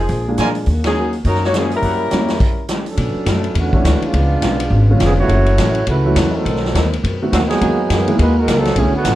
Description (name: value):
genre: jazz, big band swing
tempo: 208 BPM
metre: 4/4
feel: swing 60% on 8ths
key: unclear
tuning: A4 = 440 Hz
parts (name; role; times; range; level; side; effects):
- mellow saxophone section; melody; 0.0-2.7 s; F3 to Db5; -19 LUFS; left 1 dB; none
- clear trumpet section; stabs; 0.0-1.9 s; Fb4 to Ab5; -23 LUFS; right 2 dB; none
- upright bass; bass; 0.0-9.2 s; E#1 to B2; -17 LUFS; equal; none
- picked steel-string acoustic guitar; accompaniment; 0.1-9.2 s; F#2 to G#4; -25 LUFS; left 3 dB; none
- swinging big-band drum kit; drums; 0.1-9.1 s; crash cymbal, hi-hat, kick drum, ride cymbal, snare drum; -20 LUFS; equal; none
- warm baby grand piano; accompaniment; 0.3-8.9 s; D3 to Ab4; -20 LUFS; right 1 dB; none
- bright trombone section; second line; 2.7-9.2 s; D3 to C#5; -19 LUFS; right 2 dB; none
room: moderate club reverb, RT60 0.5 s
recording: dark, warm production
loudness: -13 LUFS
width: side -14 dB against mid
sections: 0.0-3.0 A section; 3.0-9.2 B section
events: band accent 0.8; trombone section solo 3.0-9.2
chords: 0.1 Bb7; 0.7 Ebm7; 1.8 Gb7b9; 3.0 Bm11; 4.1 C#7b9; 5.3 F#m7; 6.5 B7b9; 7.6 Emaj9#11